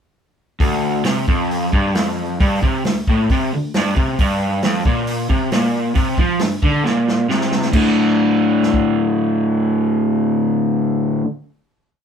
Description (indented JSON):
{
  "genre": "garage rock duo or trio",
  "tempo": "135 BPM",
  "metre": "4/4",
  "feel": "straight",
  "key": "unclear",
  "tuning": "A4 = 440 Hz",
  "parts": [
    { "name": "crunchy overdriven guitar", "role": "riff", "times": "0.6-11.3 s", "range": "D2 to F3", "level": "-16 LUFS", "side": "equal", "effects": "none" },
    { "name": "vintage drum kit", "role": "drums", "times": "0.6-8.8 s", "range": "crash cymbal, hi-hat, kick drum, snare drum", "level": "-19 LUFS", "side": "equal", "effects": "none" }
  ],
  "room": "moderate studio ambience, RT60 0.5 s",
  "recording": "band playing live in one room",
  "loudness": "-15 LUFS",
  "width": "side -7 dB against mid",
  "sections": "0.6-7.7 riff; 7.7-11.3 final chord",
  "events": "drum fill 6.9-7.7",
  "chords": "0.6 D5; 4.2 G5; 7.7 D5",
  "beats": "| 0.60 1.06 1.51 1.96 | 2.41 2.86 3.31 3.76 | 4.20 4.65 5.09 5.54 | 5.98 6.42 6.86 7.30 | 7.75 8.19 8.63 9.07 | 9.52 9.96 10.41 10.85"
}